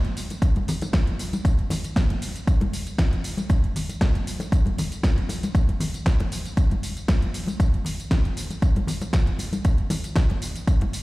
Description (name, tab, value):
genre	nu-disco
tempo	117 BPM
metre	4/4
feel	straight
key	none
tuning	none
part	pop drum kit	drums	0.0-11.0 s	hi-hat, snare drum, tambourine	-30 LUFS	equal	overdrive
part	congas	percussion	0.3-10.9 s	none	-30 LUFS	left 1 dB	none
part	electronic kick drum	drums	0.4-10.8 s	none	-20 LUFS	equal	overdrive
room	light reverb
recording	played on a big sound system in a bare room, large studio reverb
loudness	-21 LUFS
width	side -20 dB against mid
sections	0.0-11.0 A section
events	none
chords	none